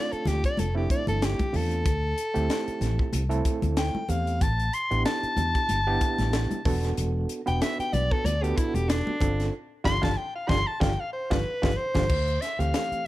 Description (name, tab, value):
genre	electric jazz fusion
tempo	94 BPM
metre	4/4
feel	swing 56% on 16ths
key	D dorian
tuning	A4 = 440 Hz
part	warm soprano saxophone	melody	0.0-13.1 s	D4 to C6	-29 LUFS	left 1 dB	plate reverb
part	overdriven reed electric piano	accompaniment	0.0-13.1 s	E3 to B4	-32 LUFS	right 4 dB	fast tremolo, plate reverb
part	fretless electric bass	bass	0.1-12.9 s	E1 to E2	-27 LUFS	equal	wide subtle chorus
part	crisp fusion drum kit	drums	0.1-13.1 s	crash cymbal, hi-hat, kick drum, snare drum	-29 LUFS	equal	none
part	congas	percussion	0.3-12.1 s	none	-33 LUFS	left 1 dB	none
room	light reverb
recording	none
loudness	-24 LUFS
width	side -16 dB against mid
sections	0.0-12.1 A section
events	soprano saxophone solo 0.0-12.1; band accent 9.5-12.1; drum fill 11.6-12.1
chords	0.0 G9sus4; 1.9 D9sus4; 4.4 A9sus4; 6.7 E9sus4; 9.2 G7sus4; 12.1 D9sus4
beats	0.58 1.22 | 1.86 2.50 3.13 3.77 | 4.41 5.05 5.69 6.33 | 6.97 7.61 8.25 8.89 | 9.53 10.17 10.81 11.46 | 12.10 12.74